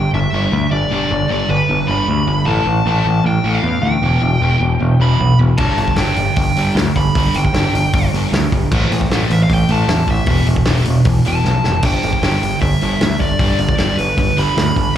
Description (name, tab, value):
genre	punk rock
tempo	154 BPM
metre	4/4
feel	straight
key	unclear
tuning	A4 = 440 Hz
part	dark smooth lead guitar	melody	0.0-14.9 s	B4 to B5	-20 LUFS	equal	overdrive, slapback echo, ping-pong delay
part	sludgy distorted guitar	riff	0.0-14.9 s	E2 to A3	-19 LUFS	right 1 dB	overdrive
part	growling picked electric bass	bass	0.0-15.0 s	E1 to E2	-17 LUFS	equal	overdrive
part	loose indie drum kit	drums	5.6-14.9 s	crash cymbal, hi-hat, kick drum, snare drum	-19 LUFS	equal	none
room	studio reverb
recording	live gig heard through the venue's PA, club reverb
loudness	-13 LUFS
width	side -10 dB against mid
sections	0.0-15.0 A section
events	drum fill 11.4-11.8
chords	0.0 G; 2.5 A5; 4.0 Em; 5.6 G5; 8.7 A5; 10.3 E5; 11.8 G